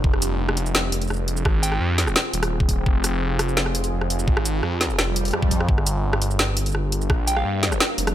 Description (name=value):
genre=half-time drum and bass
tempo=170 BPM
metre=4/4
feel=half-time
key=unclear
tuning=A4 = 440 Hz
part: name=deep dark ambient pad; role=sustained chords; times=0.0-8.1 s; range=G3 to Bb4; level=-30 LUFS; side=equal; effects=chorus, built-in reverb, sidechain pumping
part: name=phased detuned saw bass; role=bass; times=0.0-8.1 s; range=Eb1 to G2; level=-23 LUFS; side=equal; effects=phaser
part: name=electronic kick drum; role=drums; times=0.0-7.2 s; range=none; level=-20 LUFS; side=equal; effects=overdrive
part: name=drum and bass drum kit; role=drums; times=0.1-8.1 s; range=hi-hat, rim click, shaker, snare drum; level=-23 LUFS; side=equal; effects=overdrive
part: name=soft synth bell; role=melody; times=1.6-1.7, 7.3-7.7 s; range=F5 to G5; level=-29 LUFS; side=right 1 dB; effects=chorus, digital delay
part: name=swell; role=sound effects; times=5.1-5.7 s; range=none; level=-31 LUFS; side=right 3 dB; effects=none
room=digital ambience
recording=none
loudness=-19 LUFS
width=side -12 dB against mid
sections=0.0-8.1 A section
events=swell 5.1-5.7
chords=0.0 Fm; 5.7 Gm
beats=| 0.04 0.39 0.75 1.10 | 1.45 1.80 2.16 2.51 | 2.86 3.22 3.57 3.92 | 4.28 4.63 4.98 5.33 | 5.69 6.04 6.39 6.75 | 7.10 7.45 7.80